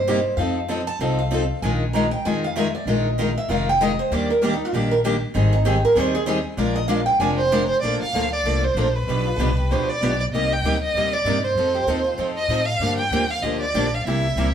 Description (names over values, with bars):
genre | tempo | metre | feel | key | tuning
acoustic string swing (jazz manouche) | 193 BPM | 4/4 | swing 59% on 8ths | Bb major from 7.8 s | A4 = 441 Hz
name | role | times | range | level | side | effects
picked acoustic archtop guitar | second line | 0.0-12.3 s | Eb4 to Bb5 | -23 LUFS | right 1 dB | none
upright bass | bass | 0.0-14.5 s | F1 to A2 | -25 LUFS | equal | none
picked steel-string acoustic guitar | accompaniment | 0.1-14.5 s | B2 to B4 | -26 LUFS | left 3 dB | none
picked steel-string acoustic guitar | accompaniment | 0.1-14.5 s | B2 to B4 | -27 LUFS | right 3 dB | none
warm violin | melody | 7.4-14.5 s | Cb5 to G5 | -22 LUFS | right 1 dB | none
room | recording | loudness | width
wet studio reverb, RT60 0.9 s | band playing live in one room | -19 LUFS | side -8 dB against mid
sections
0.0-7.8 A section; 7.8-14.5 B section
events
steel-string acoustic guitar solo 0.0-7.8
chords
0.4 F7; 1.6 Bb7sus4; 4.1 Ebmaj7; 5.3 Abmaj7; 6.6 Bb7; 7.8 Bbmaj9; 9.1 G7/B; 10.3 Cm7; 11.6 F7; 12.8 Gm7